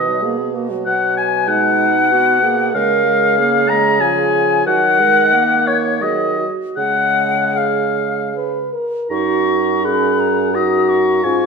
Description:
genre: classical, slow romantic movement for wind quintet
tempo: 75-98 BPM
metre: 3/4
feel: rubato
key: F# major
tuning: A4 = 445 Hz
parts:
  - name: hollow concert flute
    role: melody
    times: 0.0-11.5 s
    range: C#5 to D#6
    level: -20 LUFS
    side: left 8 dB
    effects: none
  - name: warm oboe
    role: second line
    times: 0.0-11.5 s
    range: C#5 to A#5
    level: -17 LUFS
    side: left 3 dB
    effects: none
  - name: mellow clarinet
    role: accompaniment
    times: 0.0-11.5 s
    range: C#4 to B4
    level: -21 LUFS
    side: right 10 dB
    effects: none
  - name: warm French horn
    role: accompaniment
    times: 0.0-11.5 s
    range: E#3 to B4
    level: -21 LUFS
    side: equal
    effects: none
  - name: dark bassoon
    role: bass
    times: 0.0-11.5 s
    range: F#2 to D#3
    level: -22 LUFS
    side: right 4 dB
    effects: none
room: moderate recital hall reverb, RT60 1.4 s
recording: minimal, uncompressed stereo recording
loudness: -13 LUFS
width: side -5 dB against mid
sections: 0.0-9.1 A section; 9.1-11.5 B section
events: none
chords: 0.0 Bmaj7; 2.8 C#; 4.7 D#m; 6.8 C#; 9.1 F#

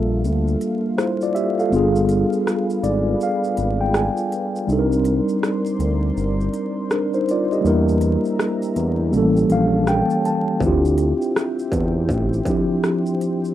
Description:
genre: lo-fi hip hop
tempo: 81 BPM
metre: 4/4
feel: swing 62% on 16ths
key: G dorian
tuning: A4 = 440 Hz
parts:
  - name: mellow tine electric piano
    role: accompaniment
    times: 0.0-13.5 s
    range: E3 to A5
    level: -19 LUFS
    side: equal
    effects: medium stereo tremolo, low-pass filter
  - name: dark analog pad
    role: sustained chords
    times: 0.0-13.5 s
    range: Bb3 to C6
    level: -32 LUFS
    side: equal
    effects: chorus, low-pass filter
  - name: smooth synth bass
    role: bass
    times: 0.0-12.4 s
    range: G1 to E2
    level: -21 LUFS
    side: equal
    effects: none
  - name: industrial drum kit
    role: drums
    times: 0.2-13.5 s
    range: hi-hat, kick drum, rim click, shaker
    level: -26 LUFS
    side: equal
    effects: distortion
room: light reverb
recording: rough home demo mix, vinyl crackle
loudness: -17 LUFS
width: side -12 dB against mid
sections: 0.0-13.5 A section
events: break 0.0-10.6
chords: 0.0 Gm9; 1.7 G7b9; 4.7 Cm9; 7.6 Em7b5; 9.1 A7b9; 10.6 Dm11

